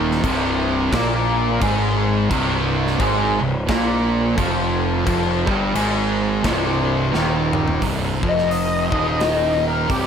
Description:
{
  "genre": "stoner and doom metal",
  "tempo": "87 BPM",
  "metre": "4/4",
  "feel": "swing 59% on 8ths",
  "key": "C minor",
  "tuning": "A4 = 440 Hz",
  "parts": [
    { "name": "crunchy overdriven guitar", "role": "riff", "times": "0.0-7.8 s", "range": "C2 to Bb3", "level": "-23 LUFS", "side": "equal", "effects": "none" },
    { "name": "thick fuzz guitar", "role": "riff", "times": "0.0-10.1 s", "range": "C2 to Bb3", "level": "-25 LUFS", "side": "left 8 dB", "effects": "distortion" },
    { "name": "thick fuzz guitar", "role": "riff", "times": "0.0-10.1 s", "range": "C2 to Bb3", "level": "-23 LUFS", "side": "right 7 dB", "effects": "distortion" },
    { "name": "fuzz picked electric bass", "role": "bass", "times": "0.0-10.1 s", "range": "C1 to Bb1", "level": "-24 LUFS", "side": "equal", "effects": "overdrive" },
    { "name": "big rock drum kit", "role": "drums", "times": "0.1-10.1 s", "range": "crash cymbal, hi-hat, kick drum, snare drum, toms", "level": "-26 LUFS", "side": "equal", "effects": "none" },
    { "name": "fuzz lead guitar", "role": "melody", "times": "8.3-10.1 s", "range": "G4 to Eb5", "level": "-20 LUFS", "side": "left 4 dB", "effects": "wah, distortion, analog delay" }
  ],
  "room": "light reverb",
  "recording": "none",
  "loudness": "-17 LUFS",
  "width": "side -7 dB against mid",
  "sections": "0.0-7.8 A section; 7.8-10.1 B section",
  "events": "drum fill 7.1-7.8; lead electric guitar solo 7.8-10.1",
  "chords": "0.0 Cm",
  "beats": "0.23 0.92 1.61 | 2.30 2.99 3.68 4.37 | 5.06 5.75 6.44 7.13 | 7.82 8.51 9.20 9.89"
}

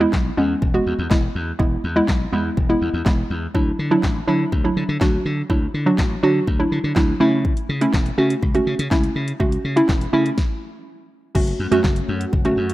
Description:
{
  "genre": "dance-pop",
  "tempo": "123 BPM",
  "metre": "4/4",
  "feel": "straight",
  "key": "unclear",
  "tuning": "A4 = 440 Hz",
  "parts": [
    { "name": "hollow square pluck", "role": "accompaniment", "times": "0.0-12.7 s", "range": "F#3 to F#4", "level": "-20 LUFS", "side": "right 1 dB", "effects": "chorus, sidechain pumping" },
    { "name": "slap bass", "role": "bass", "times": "0.0-12.7 s", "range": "E1 to D3", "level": "-24 LUFS", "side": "left 1 dB", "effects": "sidechain pumping" },
    { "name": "house drum kit", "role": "drums", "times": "0.1-12.7 s", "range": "crash cymbal, handclaps, hi-hat, kick drum, snare drum", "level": "-21 LUFS", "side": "left 1 dB", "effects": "none" },
    { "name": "warm analog pad", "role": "sustained chords", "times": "11.4-12.7 s", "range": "A3 to F#4", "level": "-29 LUFS", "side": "left 2 dB", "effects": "chorus, sidechain pumping" }
  ],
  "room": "light reverb, digital ambience",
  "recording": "rough home demo mix",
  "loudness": "-17 LUFS",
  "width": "side -16 dB against mid",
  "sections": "0.0-11.4 A section; 11.4-12.7 B section",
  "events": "stop 10.4-11.4",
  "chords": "0.0 E; 3.5 Dadd9; 7.2 A; 11.4 F#m",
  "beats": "0.13 0.62 1.11 | 1.60 2.08 2.57 3.06 | 3.55 4.04 4.52 5.01 | 5.50 5.99 6.47 6.96 | 7.45 7.94 8.43 8.91 | 9.40 9.89 10.38 10.86 | 11.35 11.84 12.33"
}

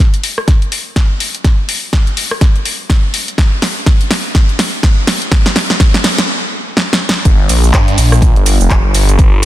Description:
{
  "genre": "bass house",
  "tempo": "124 BPM",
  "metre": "4/4",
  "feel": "swing 59% on 16ths",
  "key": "unclear",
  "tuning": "A4 = 440 Hz",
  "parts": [
    { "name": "house drum kit", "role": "drums", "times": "0.1-9.4 s", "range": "handclaps, hi-hat, rim click, shaker, snare drum", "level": "-14 LUFS", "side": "equal", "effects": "none" },
    { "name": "electronic kick drum", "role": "drums", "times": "0.5-9.3 s", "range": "none", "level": "-10 LUFS", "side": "equal", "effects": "none" },
    { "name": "phased detuned saw bass", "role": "bass", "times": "7.3-9.4 s", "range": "F1 to G2", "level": "-10 LUFS", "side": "equal", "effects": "phaser, sidechain pumping" }
  ],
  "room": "light reverb, digital ambience",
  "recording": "dense, heavily limited modern master",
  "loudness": "-10 LUFS",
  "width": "side -14 dB against mid",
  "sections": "0.0-7.3 A section; 7.3-9.4 B section",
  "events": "build-up 0.0-7.3; drum fill 0.0-6.3, 6.8-7.3; stop 6.3-7.3; drop 7.3-9.4",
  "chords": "none",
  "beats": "0.48 0.96 | 1.45 1.93 2.41 2.90 | 3.38 3.87 4.35 4.83 | 5.32 5.80 6.28 6.77 | 7.25 7.74 8.22 8.70 | 9.19"
}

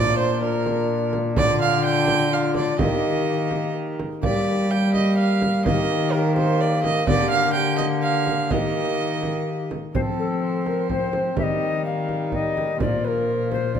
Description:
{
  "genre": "classical, renaissance-style consort dance",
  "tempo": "126 BPM",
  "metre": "3/4",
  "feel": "straight",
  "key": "unclear",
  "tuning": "A4 = 441 Hz",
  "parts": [
    { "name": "tenor recorder", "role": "melody", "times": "0.0-13.8 s", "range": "F4 to F5", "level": "-28 LUFS", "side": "left 4 dB", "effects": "none" },
    { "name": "warm violin", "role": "second line", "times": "0.0-13.8 s", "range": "Eb4 to G5", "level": "-25 LUFS", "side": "right 6 dB", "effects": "none" },
    { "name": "concert harp", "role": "accompaniment", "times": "0.0-13.8 s", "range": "Bb2 to Bb4", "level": "-28 LUFS", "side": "left 7 dB", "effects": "none" },
    { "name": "mellow bassoon", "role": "accompaniment", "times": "0.0-13.8 s", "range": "F3 to D4", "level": "-28 LUFS", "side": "left 1 dB", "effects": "none" },
    { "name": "rich cello", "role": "bass", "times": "0.0-13.8 s", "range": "Bb2 to G3", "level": "-26 LUFS", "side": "right 1 dB", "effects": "none" },
    { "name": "frame drum", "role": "percussion", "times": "0.7-13.8 s", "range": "none", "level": "-28 LUFS", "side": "right 3 dB", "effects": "none" }
  ],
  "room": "wet recital hall reverb, RT60 1.6 s",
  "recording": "none",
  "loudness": "-19 LUFS",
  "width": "side -8 dB against mid",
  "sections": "0.0-10.0 A section; 10.0-13.8 B section",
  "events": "none",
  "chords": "0.0 Bb; 1.4 Dm; 2.8 Eb; 4.2 Gm; 5.7 Eb; 7.1 Gm/D; 8.5 Eb; 10.0 F; 11.4 Eb; 12.8 Bb",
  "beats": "0.42 0.90 | 1.37 1.84 2.31 | 2.79 3.27 3.75 | 4.23 4.71 5.19 | 5.66 6.13 6.61 | 7.08 7.55 8.03 | 8.51 8.99 9.47 | 9.95 10.43 10.91 | 11.38 11.86 12.34 | 12.81 13.29 13.76"
}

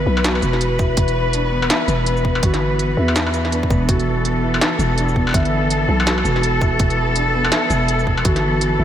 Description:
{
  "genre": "half-time drum and bass",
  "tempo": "165 BPM",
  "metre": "4/4",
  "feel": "swing 60% on 16ths, half-time",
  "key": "E minor",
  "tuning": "A4 = 440 Hz",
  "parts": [
    { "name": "warm chamber cello section", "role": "sustained chords", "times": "0.0-8.8 s", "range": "E3 to B4", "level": "-20 LUFS", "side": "left 1 dB", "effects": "sidechain pumping" },
    { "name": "felt-muted upright piano", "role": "arpeggios", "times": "0.0-8.8 s", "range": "B3 to E5", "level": "-24 LUFS", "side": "right 2 dB", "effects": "tape echo" },
    { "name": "growling 808-style bass", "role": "bass", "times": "0.0-8.8 s", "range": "E1 to E2", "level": "-20 LUFS", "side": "equal", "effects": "none" },
    { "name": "industrial drum kit", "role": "drums", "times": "0.2-8.7 s", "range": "hi-hat, shaker, snare drum, struck metal", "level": "-22 LUFS", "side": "equal", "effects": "none" },
    { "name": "electronic kick drum", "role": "drums", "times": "0.8-8.3 s", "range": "none", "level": "-19 LUFS", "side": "equal", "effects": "overdrive" }
  ],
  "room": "moderate lush hall reverb, RT60 2.1 s",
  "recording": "dreamy mix soaked in reverb",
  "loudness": "-15 LUFS",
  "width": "side -10 dB against mid",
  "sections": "0.0-8.8 A section",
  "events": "none",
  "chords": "0.0 E5",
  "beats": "0.25 0.61 | 0.97 1.34 1.70 2.07 | 2.43 2.79 3.16 3.52 | 3.88 4.25 4.61 4.97 | 5.34 5.70 6.07 6.43 | 6.79 7.16 7.52 7.88 | 8.25 8.61"
}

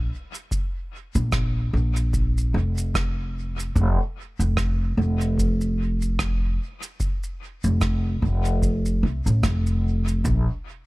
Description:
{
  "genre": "ambient dub",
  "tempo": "74 BPM",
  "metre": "4/4",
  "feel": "swing 57% on 16ths",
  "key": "unclear",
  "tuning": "A4 = 441 Hz",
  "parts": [
    { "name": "upright bass", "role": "bass", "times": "0.0-10.4 s", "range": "F1 to C2", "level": "-22 LUFS", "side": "equal", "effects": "tube saturation" },
    { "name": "shaker and rim click", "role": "drums", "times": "0.3-10.4 s", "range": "none", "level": "-32 LUFS", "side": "right 2 dB", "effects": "dub echo" },
    { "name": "electronic kick drum", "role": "drums", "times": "0.5-10.4 s", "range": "none", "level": "-28 LUFS", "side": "equal", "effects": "none" }
  ],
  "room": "little or no reverb",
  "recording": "echo-heavy mix",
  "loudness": "-21 LUFS",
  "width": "side -20 dB against mid",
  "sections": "0.0-10.9 A section",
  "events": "none",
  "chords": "none",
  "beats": "| 0.52 1.33 2.14 2.95 | 3.76 4.57 5.38 6.19 | 7.00 7.81 8.62 9.44 | 10.25"
}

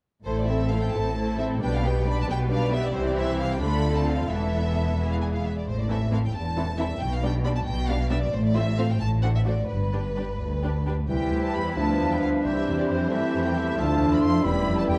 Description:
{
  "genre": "quick classical-period movement for symphony orchestra",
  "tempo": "89 BPM (dotted quarters)",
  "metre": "6/8",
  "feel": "straight",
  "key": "A minor, C major from 8.3 s",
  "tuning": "A4 = 440 Hz",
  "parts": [
    { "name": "rich studio violin section", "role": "melody", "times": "0.2-15.0 s", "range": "B4 to C6", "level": "-36 LUFS", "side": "equal", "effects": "none" },
    { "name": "warm studio violin section", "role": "second line", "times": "0.2-15.0 s", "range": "D4 to D5", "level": "-35 LUFS", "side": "equal", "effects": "none" },
    { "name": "warm symphonic viola section", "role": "accompaniment", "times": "0.3-15.0 s", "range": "E3 to A4", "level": "-34 LUFS", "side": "equal", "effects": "none" },
    { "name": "rich studio cello section", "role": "bass", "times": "0.3-15.0 s", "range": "C2 to D3", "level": "-31 LUFS", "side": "equal", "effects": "none" },
    { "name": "rich studio double bass section", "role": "bass", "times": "0.3-14.6 s", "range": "E1 to D2", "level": "-30 LUFS", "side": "equal", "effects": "none" },
    { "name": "mellow clarinet", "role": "second line", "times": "11.1-15.0 s", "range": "D4 to E4", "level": "-32 LUFS", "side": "equal", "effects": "none" },
    { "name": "small flute group", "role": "second line", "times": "11.1-15.0 s", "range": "C5 to C6", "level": "-36 LUFS", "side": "equal", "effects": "none" },
    { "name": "warm oboe", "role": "second line", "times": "11.1-15.0 s", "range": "B4 to E5", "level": "-38 LUFS", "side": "equal", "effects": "none" },
    { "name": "dark bassoon", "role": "accompaniment", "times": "11.1-15.0 s", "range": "E3 to A3", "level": "-33 LUFS", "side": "equal", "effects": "none" },
    { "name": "mellow French horn section", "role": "sustained chords", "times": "11.1-15.0 s", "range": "F3 to E4", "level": "-30 LUFS", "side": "equal", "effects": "none" }
  ],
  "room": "moderate recital hall reverb, RT60 1.4 s",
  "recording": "dark, warm production",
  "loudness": "-25 LUFS",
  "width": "mono",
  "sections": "0.3-11.1 A section; 11.1-15.0 B section",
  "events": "none",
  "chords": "0.3 Am; 1.6 G/B; 2.9 C; 3.6 Dm; 4.3 Esus4; 5.7 Am; 7.0 G/B; 8.3 F/A; 9.0 D7/A; 9.7 G; 11.1 C; 11.8 G7/D; 12.4 C; 13.8 Dm; 14.4 A7/E",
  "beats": "| 0.25 0.94 | 1.61 2.28 | 2.95 3.62 | 4.30 4.98 | 5.67 6.34 | 7.01 7.66 | 8.32 9.00 | 9.69 10.40 | 11.10 11.77 | 12.45 13.11 | 13.78 14.44"
}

